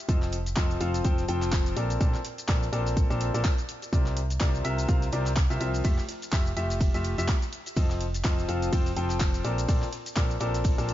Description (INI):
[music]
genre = piano house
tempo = 125 BPM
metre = 4/4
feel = swing 57% on 16ths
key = F major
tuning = A4 = 441 Hz
[part]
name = bright concert grand piano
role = riff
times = 0.1-10.9 s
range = Bb2 to G5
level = -31 LUFS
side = left 2 dB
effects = sidechain pumping, tape echo
[part]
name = solid FM bass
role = bass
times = 0.1-10.9 s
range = F1 to C2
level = -30 LUFS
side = equal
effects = sidechain pumping
[part]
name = damped 70s drum kit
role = drums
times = 0.1-10.9 s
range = hi-hat, snare drum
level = -47 LUFS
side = left 3 dB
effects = none
[part]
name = electronic kick drum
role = drums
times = 0.1-10.8 s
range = none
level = -25 LUFS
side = equal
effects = overdrive, studio reverb
[part]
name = garage drum kit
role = drums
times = 0.1-10.9 s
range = handclaps, hi-hat, ride cymbal, shaker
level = -36 LUFS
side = equal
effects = overdrive, studio reverb
[sound]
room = small room ambience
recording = nothing above 7.4 kHz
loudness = -24 LUFS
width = side -13 dB against mid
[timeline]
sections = 0.0-10.9 A section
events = none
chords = 0.0 F7; 1.8 Bbmaj9; 3.9 C9sus4; 5.8 Fmaj9; 7.5 F7; 9.4 Bbmaj9